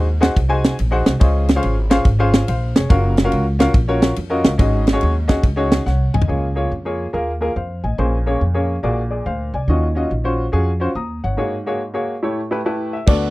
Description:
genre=uptempo gospel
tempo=142 BPM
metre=4/4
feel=swing 66% on 8ths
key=Db major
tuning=A4 = 440 Hz
part: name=clear baby grand piano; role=accompaniment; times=0.0-13.3 s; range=Ab2 to Eb6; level=-20 LUFS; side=left 1 dB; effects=none
part: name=upright bass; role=bass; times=0.0-13.3 s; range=F1 to F2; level=-19 LUFS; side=equal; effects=none
part: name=tight funk drum kit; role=drums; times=0.2-6.3, 13.1-13.2 s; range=crash cymbal, kick drum, ride cymbal, snare drum, toms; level=-15 LUFS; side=equal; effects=none
room=little or no reverb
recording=dry, close 1970s-style studio recording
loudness=-16 LUFS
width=side -19 dB against mid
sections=0.0-6.3 A section; 6.3-13.1 B section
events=drum fill 5.9-6.3; break 11.4-13.1; grand piano fill 12.4-13.1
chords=0.0 Ab7; 1.2 Dbmaj9; 2.9 Gbmaj7; 4.6 Ab7sus4; 6.3 Db6; 8.0 Bbm9; 8.8 Bb7b13; 9.7 Ebm9; 11.4 Ab9sus4; 12.2 A7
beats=0.37 0.79 | 1.21 1.64 2.06 2.48 | 2.90 3.33 3.75 4.17 | 4.59 5.02 5.44 5.86 | 6.29 6.71 7.14 7.56 | 7.99 8.41 8.84 9.26 | 9.69 10.11 10.53 10.96 | 11.38 11.81 12.23 12.65 | 13.07

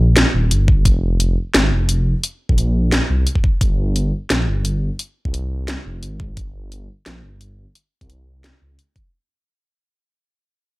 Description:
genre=half-time drum and bass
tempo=174 BPM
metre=4/4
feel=half-time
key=unclear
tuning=A4 = 440 Hz
part: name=dark detuned saw bass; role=bass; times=0.0-8.8 s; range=Eb1 to Db2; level=-18 LUFS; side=equal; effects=none
part: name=drum and bass drum kit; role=drums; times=0.2-9.0 s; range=hi-hat, snare drum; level=-18 LUFS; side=equal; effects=none
part: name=electronic kick drum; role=drums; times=0.7-9.0 s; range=none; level=-16 LUFS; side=equal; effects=overdrive
room=little or no reverb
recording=dry, gritty hardware recording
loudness=-16 LUFS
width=side -21 dB against mid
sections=0.0-9.1 A section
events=fade-out 0.0-9.1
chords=none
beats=0.16 0.51 | 0.85 1.20 1.54 1.89 | 2.23 2.58 2.92 3.27 | 3.61 3.96 4.30 4.65 | 4.99 5.34 5.68 6.03 | 6.37 6.71 7.06 7.41 | 7.75 8.10 8.44 8.78

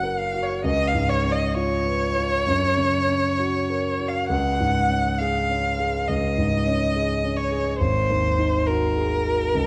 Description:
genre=classical, romantic duo for violin and grand piano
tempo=65-71 BPM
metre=4/4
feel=rubato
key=unclear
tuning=A4 = 442 Hz
part: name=rich violin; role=melody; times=0.0-9.7 s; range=A#4 to F#5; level=-26 LUFS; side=equal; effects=none
part: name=dark concert grand piano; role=accompaniment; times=0.0-9.7 s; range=G#1 to B4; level=-25 LUFS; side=equal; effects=none
room=moderate concert hall reverb, RT60 2.1 s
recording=dark, warm production, vinyl crackle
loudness=-23 LUFS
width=mono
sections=0.0-9.7 A section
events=none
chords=0.0 F#; 0.7 C#7; 2.5 F#; 4.3 C#; 7.8 G#7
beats=| 0.65 1.55 2.47 3.38 | 4.30 5.19 6.08 6.94 | 7.79 8.67 9.55

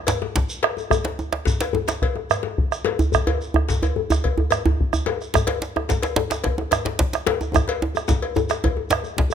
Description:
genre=west african traditional, West African drum ensemble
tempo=109 BPM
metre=4/4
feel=straight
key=none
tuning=none
part: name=cowbell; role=percussion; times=0.1-9.0 s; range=none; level=-28 LUFS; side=left 6 dB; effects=none
part: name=djembe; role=percussion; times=0.1-9.3 s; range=none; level=-24 LUFS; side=right 2 dB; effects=none
part: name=shekere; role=percussion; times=0.1-9.3 s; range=none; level=-31 LUFS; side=right 2 dB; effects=none
part: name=bombo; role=percussion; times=0.2-9.3 s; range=none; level=-23 LUFS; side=right 2 dB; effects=none
part: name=djembe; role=percussion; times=0.2-9.3 s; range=none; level=-27 LUFS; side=left 10 dB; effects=none
room=light reverb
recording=close, detailed microphones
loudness=-20 LUFS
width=side -8 dB against mid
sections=0.9-9.3 A section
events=drum fill 0.0-0.9, 7.5-9.3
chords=none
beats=0.35 | 0.91 1.47 2.02 2.58 | 3.13 3.69 4.24 4.79 | 5.34 5.89 6.44 6.99 | 7.54 8.08 8.63 9.17

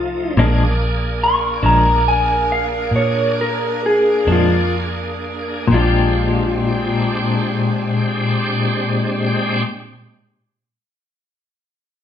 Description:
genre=blues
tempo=41-49 BPM (dotted quarters)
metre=12/8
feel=straight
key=Bb mixolydian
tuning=A4 = 440 Hz
part: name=electric guitar through a small old amp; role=melody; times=0.0-9.7 s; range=F4 to Db6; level=-18 LUFS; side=left 1 dB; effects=spring reverb, slapback echo
part: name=bright tonewheel organ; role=sustained chords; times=0.0-9.6 s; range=F3 to Ab4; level=-24 LUFS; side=right 1 dB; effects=chorus vibrato, slow rotary speaker
part: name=mellow saxophone section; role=sustained chords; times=0.0-9.6 s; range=Ab3 to Bb4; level=-27 LUFS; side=right 2 dB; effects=none
part: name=vintage muted fingered electric bass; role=bass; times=0.0-9.6 s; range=Bb1 to Bb2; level=-20 LUFS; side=equal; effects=none
part: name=clean electric guitar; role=accompaniment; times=0.4-9.7 s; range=Bb2 to G4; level=-18 LUFS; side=left 3 dB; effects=tremolo
room=moderate large studio reverb, RT60 0.9 s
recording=band playing live in one room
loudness=-15 LUFS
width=side -9 dB against mid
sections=0.0-5.7 A section; 5.7-11.6 B section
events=slowing down 0.0-5.7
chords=0.4 Bb7; 5.7 Bb13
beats=| 0.37 1.62 2.92 4.27 | 5.70 7.18 8.65

